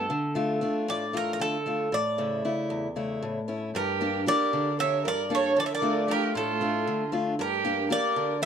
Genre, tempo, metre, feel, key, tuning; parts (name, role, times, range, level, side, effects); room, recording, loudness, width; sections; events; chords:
greek folk, Greek bouzouki band; 231 BPM (eighths); 7/8; straight; D harmonic minor; A4 = 439 Hz
Greek bouzouki; melody; 0.0-8.5 s; A4 to E5; -28 LUFS; right 1 dB
picked old ladder-braced acoustic guitar; accompaniment; 0.0-8.5 s; E2 to G4; -29 LUFS; left 2 dB
dark violin; second line; 3.8-8.4 s; F4 to C#5; -30 LUFS; right 8 dB
moderate studio reverb, RT60 0.5 s; dark, warm production; -25 LUFS; side -7 dB against mid
0.0-3.8 A section; 3.8-8.5 B section
0.1 Dm; 1.9 A; 3.8 Gm; 5.6 Dm; 7.4 Gm